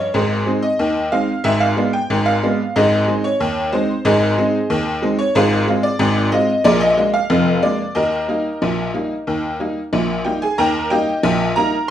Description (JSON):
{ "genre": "ragtime piano", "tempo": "92 BPM", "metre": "2/4", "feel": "straight", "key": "Ab major, Eb major from 5.3 s", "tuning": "A4 = 440 Hz", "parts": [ { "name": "tack piano", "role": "solo", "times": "0.0-11.9 s", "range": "F1 to Bb5", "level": "-15 LUFS", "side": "equal", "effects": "none" } ], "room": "wet club reverb, RT60 0.6 s", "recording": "heard from further back in the room", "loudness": "-15 LUFS", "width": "side -10 dB against mid", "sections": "0.0-10.6 A section; 10.6-11.9 B section", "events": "none", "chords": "0.1 Ab; 1.4 Abdim; 2.7 Ab; 5.3 Fm/Ab; 6.6 Bb7; 8.0 Eb" }